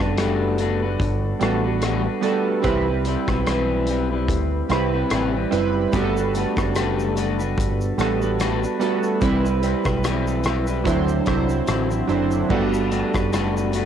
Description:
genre	indie pop, bedroom pop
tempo	73 BPM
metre	4/4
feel	swing 55% on 16ths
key	G major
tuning	A4 = 440 Hz
part	chorused retro synth keys	accompaniment	0.0-13.9 s	F#3 to C5	-23 LUFS	right 8 dB	cassette tape
part	electric guitar at the edge of break-up	accompaniment	0.0-13.9 s	C3 to B4	-25 LUFS	left 9 dB	lush chorus, vibrato effect, cassette tape
part	deep dub picked electric bass	bass	0.0-13.9 s	F#1 to D2	-25 LUFS	equal	none
part	loose indie drum kit	drums	0.2-13.9 s	crash cymbal, hi-hat, kick drum, rim click, shaker	-27 LUFS	left 1 dB	cassette tape
room	light reverb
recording	home recording on cassette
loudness	-19 LUFS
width	side -9 dB against mid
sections	0.0-12.5 A section; 12.5-13.9 A section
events	none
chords	0.0 Gmaj9; 2.6 Cmaj7; 5.9 Gmaj9; 9.2 Cmaj7; 10.9 D9; 12.5 Gmaj9

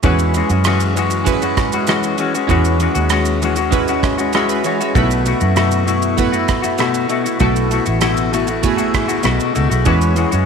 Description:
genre	indie pop, bedroom pop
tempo	98 BPM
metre	4/4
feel	straight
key	E major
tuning	A4 = 441 Hz
part	chorused retro synth keys	accompaniment	0.0-10.5 s	G#3 to B5	-21 LUFS	right 11 dB	cassette tape
part	semi-hollow electric guitar	accompaniment	0.0-10.5 s	B2 to F#4	-18 LUFS	left 10 dB	lush chorus, warbly pitch drift
part	vintage muted fingered electric bass	bass	0.0-10.5 s	A1 to F#2	-19 LUFS	right 1 dB	none
part	unplugged drum kit	drums	0.0-10.5 s	kick drum, ride cymbal, rim click, shaker	-21 LUFS	right 4 dB	none
room	moderate echo chamber reverb, RT60 1.6 s, studio reverb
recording	1960s-style stereo with parts hard left and right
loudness	-14 LUFS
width	side -6 dB against mid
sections	0.0-10.5 A section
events	synth keys fill 4.0-5.0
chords	0.0 E69; 5.0 B7sus4; 9.9 E69

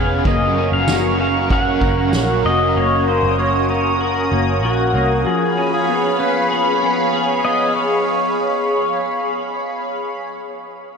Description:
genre	dream pop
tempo	96 BPM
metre	4/4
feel	straight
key	Db major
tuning	A4 = 440 Hz
part	pedal steel guitar	melody	0.0-9.6 s	Gb4 to Gb5	-20 LUFS	left 1 dB	wide subtle chorus, ping-pong delay
part	overdriven semi-hollow guitar	accompaniment	0.0-2.8 s	Gb3 to Cb5	-27 LUFS	right 4 dB	tremolo, lush chorus
part	phased analog pad	sustained chords	0.0-10.2 s	Db4 to Eb6	-20 LUFS	right 1 dB	phaser, chorus
part	semi-hollow electric guitar	arpeggios	0.0-8.3 s	F3 to Ab4	-23 LUFS	left 2 dB	ensemble chorus, ping-pong delay
part	vintage muted picked electric bass	bass	0.0-5.2 s	F1 to C2	-21 LUFS	equal	none
part	soft-mallet drum kit	drums	0.3-2.3 s	kick drum, ride cymbal, snare drum, tambourine	-23 LUFS	equal	none
room	wet huge ambient reverb, RT60 7.4 s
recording	dreamy mix soaked in reverb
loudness	-15 LUFS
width	side -5 dB against mid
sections	0.0-10.3 A section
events	none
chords	0.3 Gb; 5.3 Db7

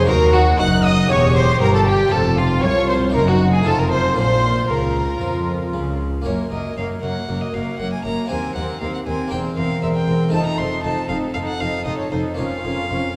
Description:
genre	classical, baroque-style concerto movement with solo episodes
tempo	118 BPM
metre	4/4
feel	straight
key	Bb minor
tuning	A4 = 440 Hz
part	warm chamber violin section	melody	0.0-13.1 s	Bb4 to Gb6	-30 LUFS	equal	none
part	warm violin	melody	0.0-13.2 s	F4 to C6	-26 LUFS	equal	none
part	warm chamber violin section	second line	0.0-13.2 s	F4 to Gb5	-28 LUFS	equal	none
part	harpsichord	accompaniment	0.0-13.2 s	C2 to Db5	-28 LUFS	equal	none
part	warm studio viola section	accompaniment	0.0-13.2 s	Bb3 to G4	-28 LUFS	equal	none
part	dark chamber cello section	bass	0.0-13.0 s	C2 to F3	-27 LUFS	equal	none
part	rich chamber double bass section	bass	0.0-13.0 s	E1 to F2	-25 LUFS	equal	none
room	wet concert hall reverb, RT60 2.6 s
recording	none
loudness	-19 LUFS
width	mono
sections	0.0-6.3 A section; 6.3-13.2 B section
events	none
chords	0.1 Ebm; 1.1 Edim7; 2.1 F5; 3.1 Ebm/Gb; 3.7 F7; 4.2 Bbm; 6.3 Gb; 8.3 Ebm6; 9.3 C7/E; 10.3 F7; 12.4 Bbm/F

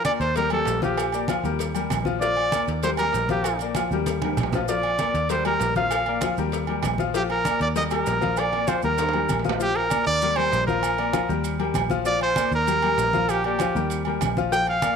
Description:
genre	latin, salsa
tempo	195 BPM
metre	4/4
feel	straight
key	Bb major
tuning	A4 = 440 Hz
part	clear trumpet	melody	0.0-15.0 s	G4 to G5	-24 LUFS	right 1 dB	none
part	congas	percussion	0.0-15.0 s	none	-32 LUFS	equal	none
part	cowbell	percussion	0.0-9.5, 14.5-15.0 s	none	-36 LUFS	left 11 dB	none
part	timbales and agogo bells	percussion	0.0-15.0 s	none	-30 LUFS	right 14 dB	none
part	clear baby grand piano	accompaniment	0.1-15.0 s	F3 to F5	-27 LUFS	left 10 dB	none
part	maracas	percussion	0.1-15.0 s	none	-40 LUFS	right 16 dB	none
part	fingered electric bass	bass	0.2-14.9 s	Bb1 to Eb2	-30 LUFS	right 2 dB	none
room	moderate echo chamber reverb, RT60 1.6 s, small room ambience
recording	1960s-style stereo with parts hard left and right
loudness	-21 LUFS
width	side -6 dB against mid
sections	0.0-9.6 A section; 9.6-15.0 A section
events	drum fill 4.1-4.7, 9.0-9.6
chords	0.4 Eb; 1.0 Bb6; 1.6 Eb; 2.2 Bb; 2.8 Eb; 3.5 Bb6; 4.1 Eb; 4.7 Bb; 5.3 Eb; 5.9 Bb6; 6.5 Eb; 7.1 Bb; 7.8 Eb; 8.4 Bb6; 9.0 Eb; 9.6 Bb; 10.2 Eb; 10.8 Bb6; 11.4 Eb; 12.1 Bb; 12.7 Eb; 13.3 Bb6; 13.9 Eb

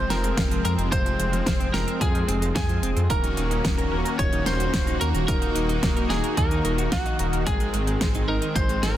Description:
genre	synthwave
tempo	110 BPM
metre	4/4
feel	straight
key	unclear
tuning	A4 = 441 Hz
part	lightly driven lead guitar	melody	0.0-9.0 s	Gb4 to Db5	-30 LUFS	equal	ping-pong delay
part	soft synth bell	second line	0.0-9.0 s	Gb5 to Db6	-35 LUFS	right 2 dB	chorus, phaser, ping-pong delay
part	brassy analog pad	sustained chords	0.0-9.0 s	Eb3 to Gb4	-28 LUFS	equal	chorus, sidechain pumping
part	clean electric guitar	riff	0.0-8.9 s	F3 to Eb5	-34 LUFS	right 2 dB	analog chorus, ping-pong delay
part	dark detuned saw bass	bass	0.0-9.0 s	Eb1 to F2	-26 LUFS	equal	sidechain pumping
part	pop drum kit	drums	0.1-8.9 s	hi-hat, snare drum	-30 LUFS	equal	soft clipping on snare
part	electronic kick drum	drums	0.4-8.7 s	none	-26 LUFS	equal	none
room	light reverb, digital ambience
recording	dense, heavily limited modern master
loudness	-21 LUFS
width	side -12 dB against mid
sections	0.0-9.0 A section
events	none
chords	0.0 Fm; 3.1 Ebm7; 7.5 Ab

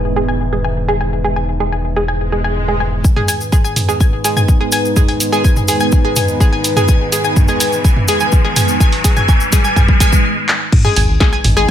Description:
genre	melodic techno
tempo	125 BPM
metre	4/4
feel	straight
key	G# minor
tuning	A4 = 440 Hz
part	dark analog pad	sustained chords	0.0-11.7 s	G#3 to E5	-22 LUFS	right 1 dB	chorus, phaser, sidechain pumping
part	round analog bass	bass	0.0-3.0, 11.0-11.7 s	E1 to G#1	-18 LUFS	equal	sidechain pumping
part	analog drone	drone	0.0-11.7 s	G#2 to D#3	-25 LUFS	left 1 dB	chorus, sidechain pumping
part	analog pluck	arpeggios	0.2-11.7 s	G#4 to G#5	-18 LUFS	equal	chorus, sidechain pumping, ping-pong delay
part	swell, riser and sub drop	sound effects	2.3-11.7 s	none	-21 LUFS	equal	none
part	electronic kick drum	drums	3.0-11.7 s	none	-11 LUFS	equal	studio reverb
part	cabasa	percussion	3.0-10.2 s	none	-23 LUFS	left 3 dB	none
part	punchy analog drum machine	drums	3.2-11.5 s	crash cymbal, handclaps, hi-hat, snare drum, toms	-18 LUFS	right 1 dB	studio reverb
room	light reverb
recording	none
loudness	-11 LUFS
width	side -10 dB against mid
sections	0.0-3.0 A section; 3.0-10.7 B section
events	swell 2.3-3.0; build-up 3.0-10.7; riser 3.0-10.2; drum fill 6.9-10.2, 10.5; stop 10.2-10.7; impact 10.7-11.7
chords	0.0 E; 3.0 G#m

